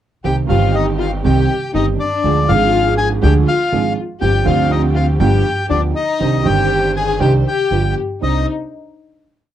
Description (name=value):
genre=tango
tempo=121 BPM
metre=4/4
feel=rubato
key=C harmonic minor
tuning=A4 = 441 Hz
part: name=bandoneon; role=melody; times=0.2-8.5 s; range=D5 to Ab5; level=-20 LUFS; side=left 3 dB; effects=none
part: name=warm studio violin section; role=second line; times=0.2-8.5 s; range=D4 to Ab4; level=-21 LUFS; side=left 6 dB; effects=none
part: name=warm grand piano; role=accompaniment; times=0.2-8.4 s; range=G1 to C5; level=-19 LUFS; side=right 8 dB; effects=none
part: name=warm chamber string section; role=stabs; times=0.2-8.4 s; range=B3 to C5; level=-25 LUFS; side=right 1 dB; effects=none
part: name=upright bass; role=bass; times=0.2-8.4 s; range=G1 to D2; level=-17 LUFS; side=equal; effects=none
room=light reverb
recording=dry, close 1970s-style studio recording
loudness=-13 LUFS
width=side -11 dB against mid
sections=0.2-8.2 A section; 8.2-9.5 final chord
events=none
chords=0.2 Cm; 2.2 Ddim; 4.2 G7sus4; 5.2 G7; 6.2 Cmadd9; 7.7 G7; 8.2 Cmadd9